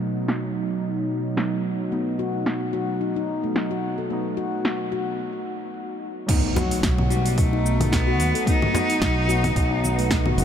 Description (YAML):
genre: organic downtempo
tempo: 110 BPM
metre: 4/4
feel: swing 56% on 16ths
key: unclear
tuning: A4 = 440 Hz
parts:
  - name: muted felt-like synth keys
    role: accompaniment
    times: 0.0-10.4 s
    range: F#3 to D#4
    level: -32 LUFS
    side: equal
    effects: chorus, sidechain pumping, low-pass filter, tape echo
  - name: warm analog pad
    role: sustained chords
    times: 0.0-10.4 s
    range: B2 to D#4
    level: -29 LUFS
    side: right 2 dB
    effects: chorus, sidechain pumping
  - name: deep house drum kit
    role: drums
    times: 0.3-10.4 s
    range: congas, crash cymbal, hi-hat, shaker, snare drum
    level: -29 LUFS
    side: equal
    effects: overdrive, low-pass filter on perc, low-pass filter on hats, low-pass filter on toms, low-pass filter on snare, low-pass filter on cymbals
  - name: handpan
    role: arpeggios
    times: 1.9-10.3 s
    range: A3 to A4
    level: -28 LUFS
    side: left 5 dB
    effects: tape echo
  - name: electronic kick drum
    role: drums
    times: 6.3-10.2 s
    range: none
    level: -24 LUFS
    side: equal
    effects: overdrive
  - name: impact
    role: sound effects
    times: 6.3-8.5 s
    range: none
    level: -30 LUFS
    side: right 1 dB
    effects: none
  - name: bright cello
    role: melody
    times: 6.6-10.3 s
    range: F#3 to D#4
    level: -26 LUFS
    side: right 1 dB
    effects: analog delay
  - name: congas and bongos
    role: percussion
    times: 6.6-10.2 s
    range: none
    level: -32 LUFS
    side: equal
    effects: none
  - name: fretless electric bass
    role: bass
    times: 6.8-10.4 s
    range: F#1 to D#2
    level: -23 LUFS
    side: equal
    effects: tube saturation
room: moderate huge ambient reverb, RT60 8.4 s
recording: dreamy mix soaked in reverb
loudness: -21 LUFS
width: side -9 dB against mid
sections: 0.0-6.3 A section; 6.3-10.4 B section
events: break 5.2-6.3; impact 6.3-8.5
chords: 0.0 B7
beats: 0.29 0.83 1.38 | 1.92 2.47 3.01 3.56 | 4.11 4.65 5.20 5.74 | 6.29 6.83 7.38 7.92 | 8.47 9.01 9.56 10.11